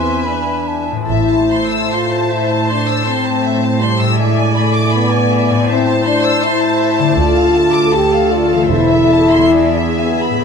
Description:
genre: classical, slow romantic movement for symphony orchestra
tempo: 63-83 BPM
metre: 4/4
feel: rubato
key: A minor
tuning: A4 = 440 Hz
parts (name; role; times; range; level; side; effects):
- warm symphonic violin section; melody; 0.0-10.4 s; E5 to A5; -24 LUFS; left 3 dB; none
- mellow hollow concert flute; second line; 0.0-1.1 s; A5 to C6; -23 LUFS; equal; none
- warm studio violin section; second line; 0.0-10.4 s; C5 to E6; -20 LUFS; left 3 dB; none
- dark symphonic viola section; accompaniment; 0.0-10.4 s; G#4 to D5; -21 LUFS; equal; none
- dark French horn section; sustained chords; 0.0-10.4 s; G3 to G4; -16 LUFS; left 2 dB; none
- concert harp; arpeggios; 0.0-10.4 s; A2 to A4; -21 LUFS; left 7 dB; none
- warm symphonic cello section; bass; 0.0-10.4 s; D2 to A2; -19 LUFS; right 5 dB; none
- rich symphonic double bass section; bass; 1.1-1.9, 7.2-9.5 s; E1 to D2; -20 LUFS; right 5 dB; none
room: light reverb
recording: close, detailed microphones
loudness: -11 LUFS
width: side -6 dB against mid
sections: 0.0-10.4 A section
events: none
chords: 0.0 E; 1.1 Am; 4.2 E7/A; 5.7 Am; 7.2 Dm; 8.7 Am/E; 9.6 E7

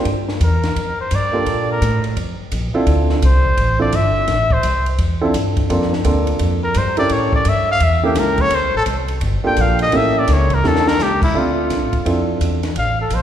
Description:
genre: jazz, small-group swing and bop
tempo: 170 BPM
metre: 4/4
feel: swing 64% on 8ths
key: D minor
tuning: A4 = 440 Hz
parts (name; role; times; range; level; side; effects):
- warm baby grand piano; accompaniment; 0.0-12.6 s; Bb3 to E5; -20 LUFS; right 2 dB; none
- upright bass; bass; 0.1-13.2 s; F1 to Bb2; -18 LUFS; equal; none
- compact cocktail drum kit; drums; 0.1-13.2 s; crash cymbal, hi-hat, kick drum, ride cymbal, snare drum; -25 LUFS; equal; none
- breathy trumpet; melody; 0.4-13.2 s; E4 to G5; -19 LUFS; left 1 dB; none
room: wet scoring stage reverb, RT60 1.8 s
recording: recorded in a church or concert hall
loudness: -14 LUFS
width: side -10 dB against mid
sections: 0.0-11.3 A section; 11.3-13.2 A section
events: trumpet solo 0.0-13.2; drum fill 10.6-11.0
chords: 0.1 Gm9; 2.9 Dm9; 5.7 Bbmaj7; 7.1 A7b9; 8.5 D5; 9.2 Gm9; 9.9 A7b9; 11.3 Dm9

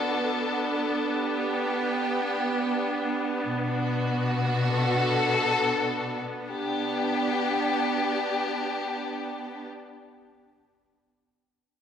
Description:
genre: ambient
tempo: free time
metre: none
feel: none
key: G major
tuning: A4 = 440 Hz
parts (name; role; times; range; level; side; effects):
- clear chamber string section; solo; 0.0-9.7 s; B2 to A4; -25 LUFS; equal; none
room: wet concert hall reverb, RT60 2.1 s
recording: none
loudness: -24 LUFS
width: side -8 dB against mid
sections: 0.0-6.2 A section; 6.2-8.9 B section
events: none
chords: 0.0 Bm7; 0.8 G; 3.5 Bm7; 6.2 G

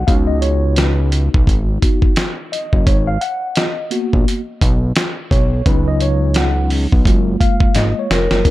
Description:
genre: hip hop, jazz-hop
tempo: 86 BPM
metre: 4/4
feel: swing 59% on 16ths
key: unclear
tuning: A4 = 440 Hz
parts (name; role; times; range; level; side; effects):
- mellow tine electric piano; accompaniment; 0.0-8.5 s; F#3 to F#5; -21 LUFS; left 1 dB; medium stereo tremolo
- fat analog bass; bass; 0.0-8.5 s; E#1 to C#2; -16 LUFS; equal; none
- dusty soul sampler-style drum kit; drums; 0.1-8.5 s; hi-hat, kick drum, snare drum; -15 LUFS; equal; none
- vibraphone with soft mallets; melody; 8.1-8.5 s; A#4; -18 LUFS; left 1 dB; none
room: little or no reverb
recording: dark, warm production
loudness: -13 LUFS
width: side -16 dB against mid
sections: 0.0-8.5 A section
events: tine electric piano solo 0.0-8.5; drum fill 7.8-8.5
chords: 0.1 C#7sus4; 2.9 G#m9; 5.7 C#7sus4; 7.1 F#maj9

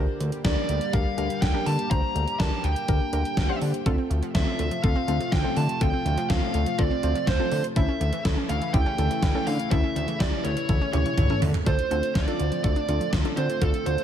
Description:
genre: synth-pop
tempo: 123 BPM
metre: 4/4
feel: straight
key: D minor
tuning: A4 = 442 Hz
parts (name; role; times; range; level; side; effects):
- soft round pluck; accompaniment; 0.0-14.0 s; C4 to C5; -32 LUFS; left 2 dB; chorus
- chorused pulse-width pad; sustained chords; 0.1-14.0 s; C3 to G4; -33 LUFS; left 1 dB; none
- fat analog bass; bass; 0.0-14.0 s; D2 to D3; -26 LUFS; equal; none
- gated 80s digital drum machine; drums; 0.2-14.0 s; hi-hat, kick drum, snare drum, toms; -26 LUFS; equal; gated reverb, gated reverb snare, overdrive
- smooth overdriven lead guitar; melody; 0.4-14.0 s; A4 to Bb5; -29 LUFS; right 2 dB; ping-pong delay
- wide unison pluck; arpeggios; 3.9-13.9 s; E3 to F4; -35 LUFS; right 3 dB; none
room: little or no reverb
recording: none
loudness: -22 LUFS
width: side -9 dB against mid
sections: 0.0-11.7 A section; 11.7-14.0 B section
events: drum fill 10.7-11.7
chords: 0.0 Gm/D; 3.9 F; 7.8 A; 11.7 Dm7

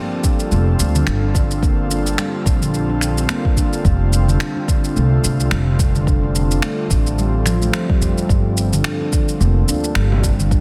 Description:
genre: organic downtempo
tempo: 108 BPM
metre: 4/4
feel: swing 57% on 16ths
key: G minor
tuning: A4 = 440 Hz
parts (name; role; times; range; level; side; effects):
- airy breathy pad; sustained chords; 0.0-10.6 s; G3 to A4; -29 LUFS; equal; chorus, sidechain pumping, shimmer reverb
- handpan; arpeggios; 0.0-10.6 s; D3 to D4; -24 LUFS; equal; digital delay, shimmer reverb
- electronic kick drum; drums; 0.2-10.6 s; none; -20 LUFS; equal; small room ambience
- electronic shaker and finger snaps; drums; 0.2-10.6 s; none; -28 LUFS; equal; small room ambience, soft clipping on snare
- upright bass; bass; 0.5-10.6 s; F1 to F2; -20 LUFS; equal; sidechain pumping
- frame drum; percussion; 10.1-10.2 s; none; -30 LUFS; equal; none
room: light reverb, small room ambience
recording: dense, heavily limited modern master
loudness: -17 LUFS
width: mono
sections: 0.0-10.6 A section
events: none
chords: 0.0 Gm7; 3.8 Fadd9; 8.3 G7(no3)

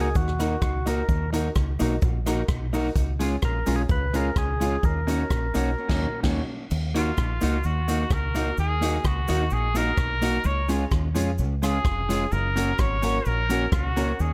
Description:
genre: ska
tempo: 128 BPM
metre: 4/4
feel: straight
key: Eb minor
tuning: A4 = 440 Hz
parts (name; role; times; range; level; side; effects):
- percussive tonewheel organ; melody; 0.0-6.2 s; Gb4 to Cb5; -33 LUFS; equal; overdrive
- electric guitar at the edge of break-up; accompaniment; 0.0-14.1 s; Ab3 to Gb4; -32 LUFS; equal; warbly pitch drift, tape echo
- bright upright piano; stabs; 0.0-14.1 s; Bb3 to Bb4; -34 LUFS; equal; none
- deep dub fingered electric bass; bass; 0.0-14.3 s; F1 to F2; -29 LUFS; equal; none
- cabasa; percussion; 0.1-14.3 s; none; -47 LUFS; equal; tape echo
- swinging big-band drum kit; drums; 0.2-14.1 s; crash cymbal, hi-hat, kick drum, rim click, snare drum; -30 LUFS; equal; none
- clear trumpet; melody; 7.0-14.3 s; F4 to Db5; -30 LUFS; equal; tape echo
room: light reverb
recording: none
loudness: -25 LUFS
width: mono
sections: 0.0-6.7 A section; 6.7-14.3 B section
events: band accent 5.8-6.7; trumpet solo 6.7-14.3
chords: 0.0 Ebm; 3.0 Db; 4.8 Ebm7; 10.4 Db; 12.3 Gb

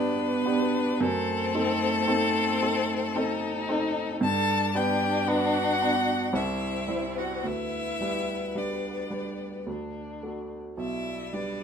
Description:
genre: classical, slow romantic movement for piano quartet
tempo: 55 BPM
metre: 3/4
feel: uneven beats, rubato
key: G major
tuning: A4 = 443 Hz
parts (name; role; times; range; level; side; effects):
- rich violin; melody; 0.0-11.6 s; A4 to A5; -30 LUFS; left 5 dB; none
- clear cello; second line; 0.0-11.6 s; A3 to A4; -34 LUFS; right 6 dB; none
- rich violin; second line; 0.0-11.6 s; G3 to D#4; -32 LUFS; left 4 dB; none
- warm grand piano; accompaniment; 0.0-11.6 s; B1 to C5; -29 LUFS; right 2 dB; none
room: light reverb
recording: none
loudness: -25 LUFS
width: side -7 dB against mid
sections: 0.0-11.6 A section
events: none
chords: 0.0 G; 1.0 F#dim7; 4.2 G; 6.3 C; 7.4 G/D; 9.7 D; 10.8 G/B

